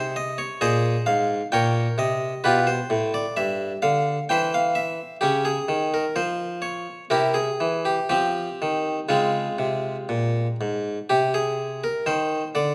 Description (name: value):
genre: classical, baroque-style suite movement for harpsichord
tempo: 60-66 BPM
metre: 3/4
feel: rubato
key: F minor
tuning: A4 = 441 Hz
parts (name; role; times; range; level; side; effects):
- harpsichord; solo; 0.0-12.7 s; G2 to G5; -24 LUFS; equal; none
room: moderate recital hall reverb, RT60 1.7 s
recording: none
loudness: -24 LUFS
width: mono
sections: 0.0-11.1 A section; 11.1-12.7 A section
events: none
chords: 0.0 Ab/C; 1.5 Gdim/Bb; 2.4 G7; 4.3 C/E; 5.2 Db; 7.1 C; 8.1 Fm; 11.1 Cm